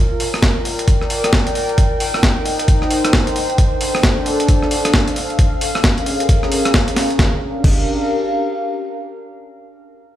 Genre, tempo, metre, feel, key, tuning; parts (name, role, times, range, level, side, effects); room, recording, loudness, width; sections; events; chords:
UK garage, two-step garage; 133 BPM; 4/4; swing 62% on 16ths; G minor; A4 = 438 Hz
warbly tape-like pad; texture; 0.0-9.0 s; Db4 to G5; -20 LUFS; equal; chorus, built-in reverb, sidechain pumping
breakbeat sampler-style drum kit; drums; 0.2-7.8 s; crash cymbal, hi-hat, rim click, snare drum; -19 LUFS; equal; overdrive
electronic kick drum; drums; 0.4-7.8 s; -15 LUFS; equal
organ-like FM bass; bass; 7.2-7.9 s; G1; -18 LUFS; equal
light reverb; played on a big sound system in a bare room, stone room reverb; -14 LUFS; side -12 dB against mid
0.0-7.2 A section; 7.2-9.0 B section
0.0 Gm7; 1.8 Cm7; 3.4 Dm7; 5.4 Bbm7; 7.2 Gm7